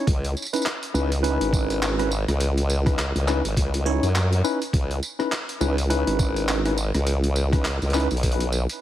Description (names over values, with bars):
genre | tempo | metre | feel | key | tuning
glitch hop | 103 BPM | 4/4 | swing 58% on 16ths | C# minor | A4 = 439 Hz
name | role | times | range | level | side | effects
tine electric piano | stabs | 0.0-8.1 s | C#4 to C#5 | -27 LUFS | left 1 dB | medium stereo tremolo, sidechain pumping, ping-pong delay
formant-sweep wobble bass | bass | 0.1-8.7 s | G#1 to F#2 | -23 LUFS | equal | chorus, tube saturation
boom bap sampler-style drum kit | drums | 0.1-8.8 s | handclaps, hi-hat, rim click, tambourine | -29 LUFS | right 1 dB | overdrive
electronic kick drum | drums | 0.1-8.4 s | none | -22 LUFS | equal | overdrive
room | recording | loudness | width
light reverb, digital ambience | heavily compressed radio sound, multiband compression, vinyl crackle | -21 LUFS | side -12 dB against mid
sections
0.0-8.8 A section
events
none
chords
0.0 C#m9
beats
| 0.07 0.66 1.24 1.82 | 2.40 2.99 3.57 4.15 | 4.73 5.32 5.90 6.48 | 7.06 7.65 8.23